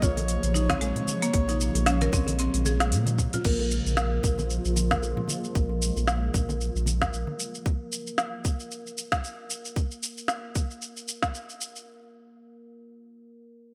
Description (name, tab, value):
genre	organic downtempo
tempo	114 BPM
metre	4/4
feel	swing 56% on 16ths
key	Bb minor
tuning	A4 = 442 Hz
part	breathy flute-like synth lead	melody	0.0-2.9 s	Db5	-36 LUFS	equal	chorus, tremolo, delay
part	granular cloud pad	sustained chords	0.0-7.6 s	C3 to F4	-37 LUFS	equal	built-in reverb, subtle chorus, sidechain pumping
part	buzzing marimba with hard mallets	arpeggios	0.0-3.4 s	Ab3 to Bb4	-33 LUFS	equal	delay
part	warm sub bass	bass	0.0-7.2 s	Bb1 to Bb2	-30 LUFS	equal	sidechain pumping
part	electronic kick drum	drums	0.0-11.3 s	none	-30 LUFS	equal	none
part	organic electronic drum kit	drums	0.0-11.8 s	crash cymbal, hi-hat, shaker, snare drum	-32 LUFS	equal	none
part	congas and bongos	percussion	0.0-7.4 s	none	-37 LUFS	equal	none
part	bronze singing bowl	texture	0.0-5.6 s	Bb3 to Bb5	-41 LUFS	equal	none
room	light reverb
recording	bright 1980s-style digital production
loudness	-27 LUFS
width	mono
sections	0.0-3.4 A section; 3.4-11.9 B section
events	filter sweep on ambient pad 3.4-7.7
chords	0.0 Bbm7